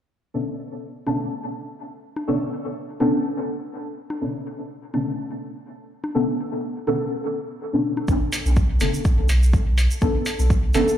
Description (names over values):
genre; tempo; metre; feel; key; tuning
dub techno; 124 BPM; 4/4; swing 54% on 16ths; B minor; A4 = 442 Hz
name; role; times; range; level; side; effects
deep mellow chord stab; stabs; 0.3-10.9 s; B3 to A4; -24 LUFS; equal; chorus, phaser, sidechain pumping, dub echo
congas; percussion; 1.1-8.1 s; none; -34 LUFS; left 2 dB; sidechain pumping on perc, dub echo
soft dub sub bass; bass; 8.1-10.9 s; F#1 to B1; -20 LUFS; equal; sidechain pumping
electronic kick drum; drums; 8.1-10.6 s; none; -21 LUFS; equal; none
tube shaker; percussion; 8.1-11.0 s; none; -35 LUFS; right 4 dB; none
electronic hi-hat; drums; 8.3-10.8 s; none; -29 LUFS; equal; none
room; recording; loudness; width
moderate lush hall reverb, RT60 1.9 s; played on a big sound system in a bare room, large studio reverb; -21 LUFS; side -10 dB against mid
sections
0.3-8.1 A section; 8.1-11.0 B section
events
none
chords
0.3 Bm9